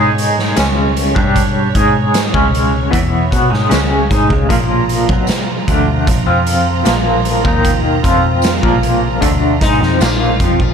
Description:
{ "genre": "psychedelic rock", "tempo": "76 BPM", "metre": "4/4", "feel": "straight", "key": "unclear", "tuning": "A4 = 440 Hz", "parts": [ { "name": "bright symphonic string section", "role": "sustained chords", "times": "0.0-10.7 s", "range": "F3 to Bb5", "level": "-25 LUFS", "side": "right 6 dB", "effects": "none" }, { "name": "twangy electric guitar", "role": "riff", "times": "0.0-10.7 s", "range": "Bb2 to Ab4", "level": "-15 LUFS", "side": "equal", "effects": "tremolo, double-tracked left and right" }, { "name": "vintage muted picked electric bass", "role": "bass", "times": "0.0-10.7 s", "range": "Bb1 to Cb3", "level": "-18 LUFS", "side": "equal", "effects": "none" }, { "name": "raw garage drum kit", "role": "drums", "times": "0.2-10.7 s", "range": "hi-hat, kick drum, snare drum", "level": "-16 LUFS", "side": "equal", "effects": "none" }, { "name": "tambourine", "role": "percussion", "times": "0.6-10.2 s", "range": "none", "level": "-33 LUFS", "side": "left 13 dB", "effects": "none" }, { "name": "sitar", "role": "melody", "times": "9.6-10.7 s", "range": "Eb4 to F4", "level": "-18 LUFS", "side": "left 4 dB", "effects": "ping-pong delay" } ], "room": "moderate plate reverb, RT60 2.5 s", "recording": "dreamy mix soaked in reverb", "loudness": "-11 LUFS", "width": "side -7 dB against mid", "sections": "0.0-10.7 A section", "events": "none", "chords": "0.0 Db5; 4.5 Bb5" }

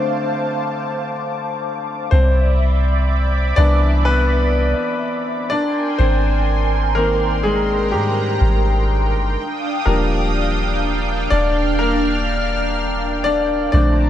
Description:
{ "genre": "R&B", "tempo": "62 BPM", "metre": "4/4", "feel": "straight", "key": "unclear", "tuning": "A4 = 440 Hz", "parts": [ { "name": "clear concert grand piano", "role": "accompaniment", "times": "0.0-14.1 s", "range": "D3 to D5", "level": "-20 LUFS", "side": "left 2 dB", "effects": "none" }, { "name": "lush unison pad", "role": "sustained chords", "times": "0.0-14.1 s", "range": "D4 to F6", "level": "-22 LUFS", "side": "right 1 dB", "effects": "chorus, phaser" }, { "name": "soft 808-style bass", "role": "bass", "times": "2.1-14.1 s", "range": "Eb1 to Ab2", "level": "-18 LUFS", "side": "equal", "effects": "none" } ], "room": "little or no reverb", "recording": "lossy compression artefacts", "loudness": "-16 LUFS", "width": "side -11 dB against mid", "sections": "0.0-2.1 A section; 2.1-14.1 B section", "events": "break 0.0-2.1; grand piano solo 0.0-2.1, 2.1-14.1", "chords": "0.0 Dm7; 2.1 Cmaj9; 5.5 Abmaj9; 9.4 Ebmaj9" }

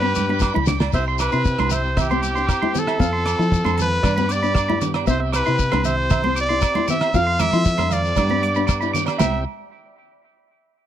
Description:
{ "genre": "highlife guitar band", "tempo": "116 BPM", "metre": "4/4", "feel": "straight", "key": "C major", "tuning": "A4 = 436 Hz", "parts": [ { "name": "bright trumpet", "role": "melody", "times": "0.0-9.4 s", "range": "G4 to F5", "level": "-23 LUFS", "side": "equal", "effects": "none" }, { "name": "brilliant trumpet", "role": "second line", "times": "0.0-0.5 s", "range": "G4", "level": "-32 LUFS", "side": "left 13 dB", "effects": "none" }, { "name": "nylon-string guitar", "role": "accompaniment", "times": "0.0-9.4 s", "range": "C4 to F4", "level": "-27 LUFS", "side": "left 6 dB", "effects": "none" }, { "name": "bright tonewheel organ", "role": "sustained chords", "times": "0.0-9.4 s", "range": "B3 to B5", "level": "-31 LUFS", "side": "left 1 dB", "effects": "slow rotary speaker, overdrive" }, { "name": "twangy electric guitar", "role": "arpeggios", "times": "0.0-9.4 s", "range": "D5 to D6", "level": "-26 LUFS", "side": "right 6 dB", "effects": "tape echo" }, { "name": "fingered electric bass", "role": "bass", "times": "0.0-9.4 s", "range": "C2 to F3", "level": "-24 LUFS", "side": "equal", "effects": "none" }, { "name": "damped 70s drum kit", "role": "drums", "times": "0.2-9.3 s", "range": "crash cymbal, hi-hat, kick drum, rim click, snare drum, toms", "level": "-22 LUFS", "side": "equal", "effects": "none" }, { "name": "congas", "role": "percussion", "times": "0.2-9.4 s", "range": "none", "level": "-28 LUFS", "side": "right 6 dB", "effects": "none" }, { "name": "shekere", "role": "percussion", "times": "0.2-9.4 s", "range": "none", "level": "-29 LUFS", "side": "left 7 dB", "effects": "none" }, { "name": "agogo bells", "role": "percussion", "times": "0.4-9.3 s", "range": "none", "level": "-31 LUFS", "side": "right 18 dB", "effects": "none" } ], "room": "small room ambience", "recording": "dry, close 1970s-style studio recording", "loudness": "-17 LUFS", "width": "side -10 dB against mid", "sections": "0.9-9.2 A section; 9.2-10.9 B section", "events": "drum fill 0.4-0.9", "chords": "0.0 G; 0.9 C; 3.0 F; 4.0 G; 5.1 C; 7.1 F; 8.2 G; 9.2 C" }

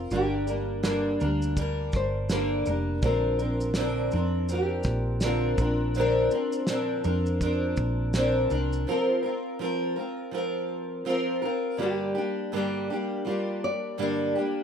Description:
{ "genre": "acoustic pop", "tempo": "82 BPM", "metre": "4/4", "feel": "swing 60% on 16ths", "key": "Bb major", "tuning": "A4 = 440 Hz", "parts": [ { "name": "nylon-string guitar", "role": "melody", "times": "0.0-14.3 s", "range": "F4 to D5", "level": "-33 LUFS", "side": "left 2 dB", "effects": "plate reverb" }, { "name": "fingerpicked steel-string acoustic guitar", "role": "accompaniment", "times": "0.0-14.6 s", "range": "G2 to Bb4", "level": "-27 LUFS", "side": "equal", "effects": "double-tracked left and right" }, { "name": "hollow-body short-scale fingered electric bass", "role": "bass", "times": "0.0-8.8 s", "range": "F1 to F2", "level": "-29 LUFS", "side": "equal", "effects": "none" }, { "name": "cloth-damped thuddy drum kit", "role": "drums", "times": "0.1-8.9 s", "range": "kick drum, shaker, snare drum", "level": "-30 LUFS", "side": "equal", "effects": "none" } ], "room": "moderate studio reverb, RT60 0.6 s", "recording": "rough home demo mix", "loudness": "-25 LUFS", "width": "side -8 dB against mid", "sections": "0.0-8.9 A section; 8.9-14.6 A section", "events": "none", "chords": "0.1 Gm; 3.0 Bbadd9; 8.9 Fsus4; 11.8 Gm" }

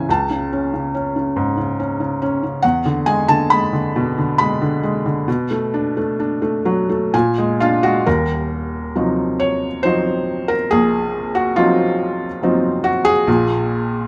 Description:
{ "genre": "classical, lyrical solo piano", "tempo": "69 BPM", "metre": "3/4", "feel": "rubato", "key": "Eb dorian from 8.1 s", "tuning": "A4 = 441 Hz", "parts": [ { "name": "felt-muted upright piano", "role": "solo", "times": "0.0-14.1 s", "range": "Eb1 to B5", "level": "-18 LUFS", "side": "equal", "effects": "none" } ], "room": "light reverb", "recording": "close, detailed microphones", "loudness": "-18 LUFS", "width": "mono", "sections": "0.0-8.1 A section; 8.1-14.1 B section", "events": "felt piano fill 6.7-8.1", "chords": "0.1 Amaj7/C#; 2.6 E7; 5.3 Bm7; 7.1 A#7b9; 8.1 Ebm69; 13.3 Bb7(no3)" }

